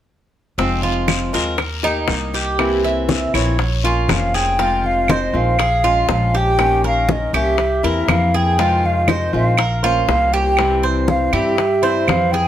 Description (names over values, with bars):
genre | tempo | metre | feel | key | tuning
latin, Cuban son and guajira | 120 BPM | 4/4 | straight | F minor | A4 = 440 Hz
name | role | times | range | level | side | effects
flamenco guitar | accompaniment | 0.6-12.5 s | C3 to C5 | -23 LUFS | left 3 dB | none
Cuban tres | arpeggios | 0.6-12.5 s | C4 to E5 | -21 LUFS | right 4 dB | none
upright bass | bass | 0.6-12.5 s | F1 to G2 | -21 LUFS | equal | none
bongos | percussion | 0.6-12.5 s | none | -24 LUFS | left 7 dB | none
congas | percussion | 0.6-12.5 s | none | -24 LUFS | left 1 dB | none
guiro | percussion | 0.6-4.6 s | none | -28 LUFS | left 7 dB | none
claves | percussion | 1.1-12.3 s | none | -25 LUFS | right 4 dB | none
breathy mellow silver concert flute | melody | 4.1-12.5 s | Eb5 to G5 | -19 LUFS | left 1 dB | none
room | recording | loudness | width
light reverb | none | -15 LUFS | side -11 dB against mid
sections
0.6-4.6 A section; 4.6-12.5 B section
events
none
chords
0.6 Fm; 1.6 Eb; 2.6 C7; 3.6 Bbm; 4.6 Fm7; 5.6 Bbm7; 6.6 Eb7/Bb; 7.6 C7; 8.6 Fm7; 9.6 Bbmadd9; 10.6 C